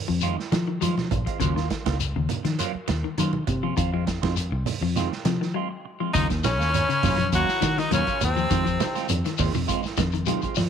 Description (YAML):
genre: afrobeat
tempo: 102 BPM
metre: 4/4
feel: swing 53% on 16ths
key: Eb dorian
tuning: A4 = 440 Hz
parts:
  - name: clean electric guitar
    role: arpeggios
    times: 0.1-10.5 s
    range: C3 to Gb3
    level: -30 LUFS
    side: left 12 dB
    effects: none
  - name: semi-hollow electric guitar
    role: stabs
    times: 0.1-10.6 s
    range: Eb3 to F4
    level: -32 LUFS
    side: right 11 dB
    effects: phaser
  - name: fingered electric bass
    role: bass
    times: 0.1-10.7 s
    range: Bb1 to F3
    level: -26 LUFS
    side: left 1 dB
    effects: none
  - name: vintage drum kit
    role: drums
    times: 0.2-10.7 s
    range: hi-hat, kick drum, snare drum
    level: -31 LUFS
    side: right 3 dB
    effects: none
  - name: shekere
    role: percussion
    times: 0.2-10.7 s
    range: none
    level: -32 LUFS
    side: left 8 dB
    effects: none
  - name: congas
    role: percussion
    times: 0.5-10.7 s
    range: none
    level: -31 LUFS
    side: right 8 dB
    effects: none
  - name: raspy tenor saxophone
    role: melody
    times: 6.1-9.1 s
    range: C4 to Gb4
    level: -25 LUFS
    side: left 1 dB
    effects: none
  - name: raspy baritone saxophone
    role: second line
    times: 6.1-9.1 s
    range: C3 to Gb3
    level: -33 LUFS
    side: left 11 dB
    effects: none
  - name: growling trumpet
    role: second line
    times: 6.2-9.1 s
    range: C4 to Gb4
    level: -34 LUFS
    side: right 8 dB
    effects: none
room: light reverb, small room ambience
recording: 1960s-style stereo with parts hard left and right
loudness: -22 LUFS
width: side -8 dB against mid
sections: 0.0-6.1 A section; 6.1-10.7 B section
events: break 5.6-6.1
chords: 0.0 Fm7; 1.4 Ebm9; 3.8 Fm7; 6.1 Ebm9; 8.5 Fm7